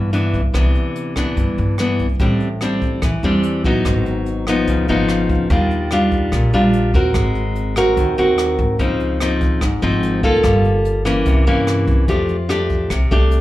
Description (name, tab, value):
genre	bossa nova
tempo	146 BPM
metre	4/4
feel	straight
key	unclear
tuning	A4 = 440 Hz
part	nylon-string guitar	accompaniment	0.0-13.4 s	G2 to Bb4	-17 LUFS	left 1 dB	none
part	upright bass	bass	0.0-13.4 s	G1 to Ab2	-19 LUFS	equal	none
part	jazz brush drum kit	drums	0.1-13.4 s	hi-hat, kick drum, rim click	-24 LUFS	equal	none
room	light reverb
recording	live gig heard through the venue's PA, club ambience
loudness	-15 LUFS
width	side -16 dB against mid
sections	0.0-2.2 A section; 2.2-13.4 B section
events	none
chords	0.0 Cmaj9; 2.2 Am11; 3.9 Abm7; 4.7 Db9; 5.5 Ebmaj9; 7.2 Ab9; 8.8 Dbmaj9; 10.4 Gm9; 11.3 C7b9; 12.1 F69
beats	0.14 | 0.55 0.96 1.38 1.79 | 2.20 2.62 3.03 3.44 | 3.85 4.27 4.68 5.09 | 5.50 5.92 6.33 6.74 | 7.15 7.56 7.97 8.39 | 8.80 9.21 9.62 10.03 | 10.44 10.86 11.27 11.68 | 12.09 12.50 12.91 13.32